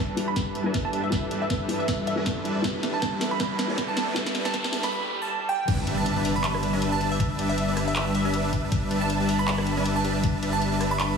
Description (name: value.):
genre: future bass.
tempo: 158 BPM.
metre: 4/4.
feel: swing 56% on 16ths, half-time.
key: G major.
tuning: A4 = 440 Hz.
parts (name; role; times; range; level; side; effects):
glassy wavetable pluck; melody; 0.0-11.1 s; E5 to B5; -30 LUFS; right 4 dB; chorus, sidechain pumping, digital delay.
felt-muted upright piano; accompaniment; 0.0-5.7 s; G3 to B4; -31 LUFS; left 3 dB; sidechain pumping.
warm studio string section; sustained chords; 0.0-4.9 s; G2 to B4; -37 LUFS; right 2 dB; none.
concert harp; arpeggios; 0.0-2.0 s; none; barely audible; none; none.
supersaw chords; riff; 0.0-11.2 s; G3 to A5; -28 LUFS; equal; sidechain pumping, low-pass filter.
riser, swell and impact; sound effects; 0.0-7.2 s; none; -35 LUFS; left 1 dB; none.
trap drum kit; drums; 0.2-11.1 s; crash cymbal, handclaps, hi-hat, rim click, snare drum; -31 LUFS; right 1 dB; none.
electronic kick drum; drums; 0.4-10.3 s; none; -28 LUFS; left 1 dB; none.
saturated sub bass; bass; 5.7-11.2 s; G1; -29 LUFS; left 2 dB; tube saturation, sidechain pumping.
room: moderate lush hall reverb, RT60 1.8 s.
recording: heavily compressed radio sound, multiband compression, high-pass filter, studio ambience.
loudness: -23 LUFS.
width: side -6 dB against mid.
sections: 0.0-5.7 A section; 5.7-11.2 B section.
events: build-up 0.0-5.7; drum fill 0.0-4.9; riser 0.0-4.9; filter sweep on supersaw synth 0.0-5.7; filter sweep on synth pluck 0.0-5.7; filter sweep 0.0-5.7; swell 4.9-5.7; drop 5.7-11.2; impact 5.7-7.2.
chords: 0.0 G69.